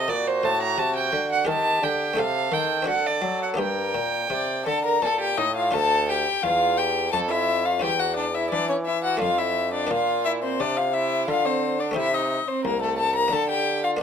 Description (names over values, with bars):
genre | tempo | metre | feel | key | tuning
classical, baroque-style sonata movement with continuo | 86 BPM | 3/4 | straight | G minor, D minor from 5.7 s | A4 = 444 Hz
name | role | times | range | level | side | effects
warm violin | melody | 0.0-13.9 s | F#4 to Bb5 | -25 LUFS | left 5 dB | none
warm violin | second line | 0.0-14.0 s | A3 to Bb5 | -26 LUFS | right 4 dB | none
buff-stop harpsichord | accompaniment | 0.0-14.0 s | C2 to C5 | -31 LUFS | left 2 dB | none
clear bassoon | bass | 0.0-14.0 s | C2 to F#3 | -28 LUFS | right 2 dB | none
room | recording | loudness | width
light reverb | none | -21 LUFS | side -7 dB against mid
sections
0.0-5.7 A section; 5.7-14.0 A section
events
none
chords
0.0 D7; 1.5 Eb; 2.2 Adim/C; 2.9 D7; 3.6 Gm; 5.7 Dm; 7.8 E7sus2; 9.2 Dm/F; 9.9 Bb; 12.0 Adim/C; 13.3 Bb/D